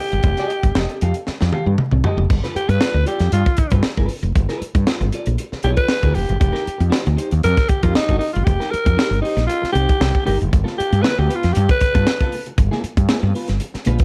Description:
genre	funk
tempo	117 BPM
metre	4/4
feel	straight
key	G mixolydian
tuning	A4 = 441 Hz
part	raspy alto saxophone	melody	0.0-12.4 s	Eb4 to B4	-24 LUFS	equal	none
part	electric guitar at the edge of break-up	accompaniment	0.0-14.0 s	B3 to F5	-29 LUFS	equal	none
part	woody fretless electric bass	bass	0.1-14.0 s	F1 to G2	-20 LUFS	equal	none
part	tight funk drum kit	drums	0.1-14.0 s	crash cymbal, hi-hat, kick drum, snare drum, toms	-22 LUFS	equal	none
room	little or no reverb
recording	vinyl crackle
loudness	-18 LUFS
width	mono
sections	0.0-2.3 A section; 2.3-14.0 B section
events	drum fill 1.3-2.3; alto saxophone solo 2.3-14.0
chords	0.0 F9; 2.3 G9; 6.4 F9sus4; 10.5 G9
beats	| 0.24 0.75 1.27 1.78 | 2.30 2.81 3.33 3.84 | 4.36 4.87 5.38 5.90 | 6.41 6.93 7.44 7.96 | 8.47 8.98 9.50 10.01 | 10.53 11.04 11.55 12.07 | 12.58 13.10 13.61

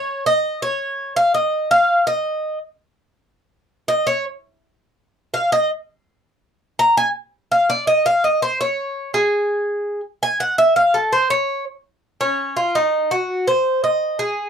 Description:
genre	latin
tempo	166 BPM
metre	4/4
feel	straight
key	unclear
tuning	A4 = 438 Hz
part	Cuban tres	solo	0.0-14.5 s	Db4 to Bb5	-16 LUFS	equal	none
room	light reverb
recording	dry, close 1970s-style studio recording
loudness	-17 LUFS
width	side -7 dB against mid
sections	0.0-12.2 A section; 12.2-14.5 B section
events	Cuban tres solo 0.0-12.2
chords	none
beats	0.26 | 0.62 0.99 1.35 1.71 | 2.07 2.44 2.80 3.16 | 3.52 3.88 4.25 4.61 | 4.97 5.33 5.70 6.06 | 6.42 6.78 7.14 7.51 | 7.87 8.23 8.59 8.95 | 9.31 9.68 10.04 10.40 | 10.76 11.12 11.48 11.84 | 12.21 12.57 12.93 13.29 | 13.65 14.01 14.37

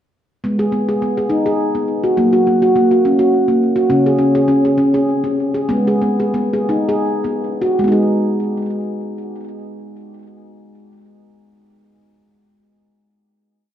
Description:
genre	world meditative, meditative tuned percussion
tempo	77-104 BPM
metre	3/4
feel	swing 55% on 16ths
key	G# minor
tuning	A4 = 440 Hz
part	handpan	solo	0.4-12.2 s	C#3 to G#4	-14 LUFS	equal	ping-pong delay
room	wet recital hall reverb, RT60 1.7 s, small room ambience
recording	none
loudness	-14 LUFS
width	side -10 dB against mid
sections	0.4-7.8 A section; 7.8-12.5 final chord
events	slowing down 3.9-7.8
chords	0.4 G#m; 2.2 F#; 3.9 C#5; 5.7 G#m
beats	| 0.45 1.02 1.60 | 2.18 2.75 3.33 | 3.91 4.49 5.08 | 5.70 6.35 7.04 | 7.78 8.56 9.34 | 10.12 10.90 11.68

